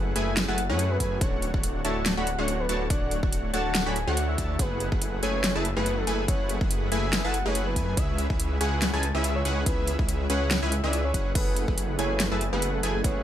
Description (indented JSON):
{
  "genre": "future bass",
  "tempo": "142 BPM",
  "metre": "4/4",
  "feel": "swing 55% on 16ths, half-time",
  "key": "F# minor",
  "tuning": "A4 = 440 Hz",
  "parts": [
    { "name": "supersaw stab", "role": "riff", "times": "0.0-13.2 s", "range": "A3 to B5", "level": "-30 LUFS", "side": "equal", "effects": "cassette tape, sidechain pumping" },
    { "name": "wide detuned saw bass", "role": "bass", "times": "0.0-13.2 s", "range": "D1 to F#2", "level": "-29 LUFS", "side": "equal", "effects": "chorus, sidechain pumping" },
    { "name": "soft octave-layered synth lead", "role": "melody", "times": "0.2-13.2 s", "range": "A4 to A5", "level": "-32 LUFS", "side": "left 1 dB", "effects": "chorus, sidechain pumping, digital delay" },
    { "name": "big-room dance drum kit", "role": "drums", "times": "0.2-13.1 s", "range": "crash cymbal, hi-hat, snare drum", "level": "-29 LUFS", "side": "equal", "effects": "overdrive" },
    { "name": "electronic kick drum", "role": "drums", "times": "1.0-13.1 s", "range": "none", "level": "-28 LUFS", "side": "equal", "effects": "overdrive" },
    { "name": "barky tine electric piano", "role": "accompaniment", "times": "11.3-13.2 s", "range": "E3 to G#4", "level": "-36 LUFS", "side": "right 5 dB", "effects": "medium stereo tremolo, sidechain pumping, tape echo" }
  ],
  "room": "light reverb",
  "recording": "none",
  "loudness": "-24 LUFS",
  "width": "side -11 dB against mid",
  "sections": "0.0-13.2 A section",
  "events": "none",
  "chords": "0.0 F#m11; 1.2 Dmaj7; 4.6 F#m11; 8.0 C#m7; 11.4 F#m11"
}